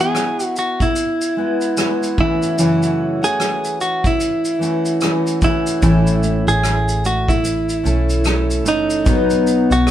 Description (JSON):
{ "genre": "acoustic pop", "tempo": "74 BPM", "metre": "4/4", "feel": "swing 60% on 16ths", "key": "unclear", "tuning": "A4 = 440 Hz", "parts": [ { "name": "direct-recorded clean electric guitar", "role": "melody", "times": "0.0-9.9 s", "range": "D#4 to G#4", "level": "-19 LUFS", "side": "right 1 dB", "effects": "none" }, { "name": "picked steel-string acoustic guitar", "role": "accompaniment", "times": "0.0-9.9 s", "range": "F#2 to A4", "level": "-20 LUFS", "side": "left 2 dB", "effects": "none" }, { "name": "soft brush drum kit", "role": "drums", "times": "0.0-9.9 s", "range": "kick drum, rim click, shaker", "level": "-21 LUFS", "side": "equal", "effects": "none" }, { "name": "nylon-string guitar", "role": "arpeggios", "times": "5.8-9.9 s", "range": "E3 to C#4", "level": "-29 LUFS", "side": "right 6 dB", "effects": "none" }, { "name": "vintage muted fingered electric bass", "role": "bass", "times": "5.8-9.9 s", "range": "F#1 to B1", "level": "-20 LUFS", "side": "equal", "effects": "none" } ], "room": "moderate studio reverb, RT60 0.6 s", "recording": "band playing live in one room", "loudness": "-15 LUFS", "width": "side -11 dB against mid", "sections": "0.0-9.9 A section", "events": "none", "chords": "0.0 Eadd9; 2.2 F#m7; 5.8 A; 9.1 B" }